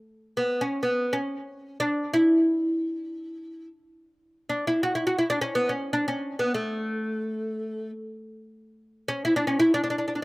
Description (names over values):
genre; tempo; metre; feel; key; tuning
Arabic maqam ensemble; free time; none; none; A maqam ajam; A4 = 440 Hz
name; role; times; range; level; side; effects
oud; solo; 0.4-10.2 s; A3 to F#4; -24 LUFS; equal; none
room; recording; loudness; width
little or no reverb; recorded outdoors, with no room sound; -24 LUFS; side -22 dB against mid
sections
0.0-10.2 A section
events
none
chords
none